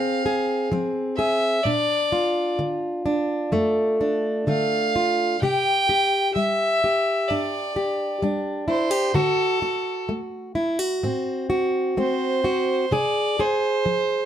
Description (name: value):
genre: acoustic folk duo or small band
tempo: 64 BPM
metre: 4/4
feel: straight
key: C mixolydian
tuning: A4 = 442 Hz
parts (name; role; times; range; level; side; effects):
- warm fiddle; melody; 0.0-14.3 s; A4 to G5; -23 LUFS; right 1 dB; none
- fingerpicked plugged-in steel-string acoustic guitar; accompaniment; 0.0-14.3 s; F2 to Ab4; -22 LUFS; equal; none
room: light reverb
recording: close, detailed microphones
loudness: -20 LUFS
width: side -10 dB against mid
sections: 0.0-14.3 A section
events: none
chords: 0.0 Fm/C; 1.7 Bbmaj7; 5.4 Csus2; 9.2 D7; 12.9 Fm/C